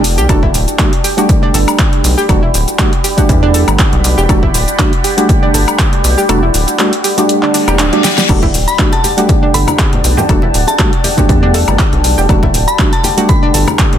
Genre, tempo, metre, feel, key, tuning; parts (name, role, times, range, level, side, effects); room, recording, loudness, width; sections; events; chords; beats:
deep house; 120 BPM; 4/4; swing 54% on 16ths; E minor; A4 = 445 Hz
deep dark ambient pad; sustained chords; 0.0-14.0 s; D5 to B5; -20 LUFS; left 2 dB; chorus, built-in reverb, sidechain pumping
percussive organ stab; stabs; 0.0-14.0 s; G3 to G4; -16 LUFS; right 1 dB; analog chorus, digital delay
rubbery square bass; bass; 0.0-13.7 s; D1 to E2; -14 LUFS; equal; tube saturation, sidechain pumping
deep house drum kit; drums; 0.0-14.0 s; crash cymbal, handclaps, hi-hat, shaker, snare drum, woodblock; -16 LUFS; left 1 dB; overdrive, studio reverb
analog pluck; arpeggios; 0.2-13.9 s; D4 to A4; -19 LUFS; right 2 dB; chorus, cassette tape, sidechain pumping, digital delay
electronic kick drum; drums; 0.3-13.9 s; -13 LUFS; equal; studio reverb
reverse cymbal; sound effects; 7.5-8.3 s; -20 LUFS; left 6 dB
bongos and congas; percussion; 8.4-14.0 s; -21 LUFS; left 3 dB
glassy synth bell; melody; 8.7-13.5 s; A5 to B5; -19 LUFS; equal; chorus, tremolo, tape echo
light reverb; dense, heavily limited modern master, faint mains hum; -9 LUFS; side -10 dB against mid
0.0-14.0 A section
kick drops out 6.3-8.3; reverse cymbal 7.5-8.3; drum fill 8.0
0.0 Em11
| 0.29 0.79 1.29 1.79 | 2.29 2.79 3.29 3.79 | 4.29 4.79 5.29 5.79 | 6.29 6.79 7.29 7.79 | 8.29 8.79 9.29 9.79 | 10.29 10.79 11.29 11.79 | 12.29 12.79 13.29 13.79